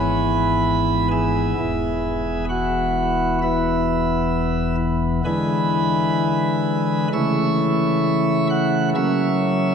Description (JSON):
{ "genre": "classical, chorale-style piece for pipe organ", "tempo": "65 BPM", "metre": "4/4", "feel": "rubato", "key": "E major", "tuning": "A4 = 440 Hz", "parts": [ { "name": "pipe organ, sparkling flutes", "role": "solo", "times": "0.0-9.7 s", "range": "E1 to F#6", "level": "-18 LUFS", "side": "equal", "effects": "none" } ], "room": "wet church reverb, RT60 3.6 s", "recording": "dark, warm production", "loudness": "-18 LUFS", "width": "side -7 dB against mid", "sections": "0.0-9.7 A section", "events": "none", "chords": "0.0 E/G#; 1.6 E; 5.2 E7/D; 7.1 A/C#; 9.0 F#7/C#" }